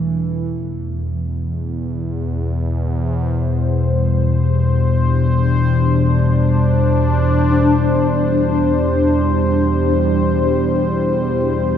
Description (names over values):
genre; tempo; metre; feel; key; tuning
dark ambient drone; free time; none; none; unclear; A4 = 440 Hz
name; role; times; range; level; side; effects
sweeping resonant pad; sustained chords; 0.0-11.8 s; E2 to C5; -17 LUFS; equal; chorus
gamelan-type bronze metallophone; arpeggios; 0.0-11.8 s; E3 to D4; -24 LUFS; left 4 dB; none
deep rumbling drone; drone; 0.0-11.8 s; E2 to B2; -19 LUFS; left 2 dB; built-in reverb
room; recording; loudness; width
wet huge ambient reverb, RT60 7.9 s; cassette tape, nothing above 7.5 kHz; -15 LUFS; side -8 dB against mid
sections
0.0-11.8 A section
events
filter sweep on synth drone 0.0-11.8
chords
0.4 Cmaj9/E